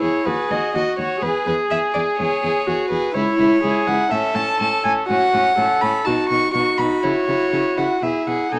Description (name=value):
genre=quick classical-period movement for string quartet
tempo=124 BPM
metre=4/4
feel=rubato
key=unclear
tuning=A4 = 439 Hz
part: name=rich violin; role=melody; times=0.0-8.6 s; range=B4 to C#6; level=-24 LUFS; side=equal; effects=none
part: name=rich violin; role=second line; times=0.0-8.6 s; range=C#4 to A4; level=-27 LUFS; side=equal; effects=none
part: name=warm viola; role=accompaniment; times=0.0-8.6 s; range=D#4 to A4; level=-24 LUFS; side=equal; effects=none
part: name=dark cello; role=bass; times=0.0-8.6 s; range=C#2 to C#3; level=-30 LUFS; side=equal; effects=none
room=light reverb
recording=small speaker sound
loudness=-19 LUFS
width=mono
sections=0.0-8.6 A section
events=none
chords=0.3 D#madd11; 1.2 E; 3.1 C#m; 4.1 A; 6.1 B; 7.0 C#m; 8.0 E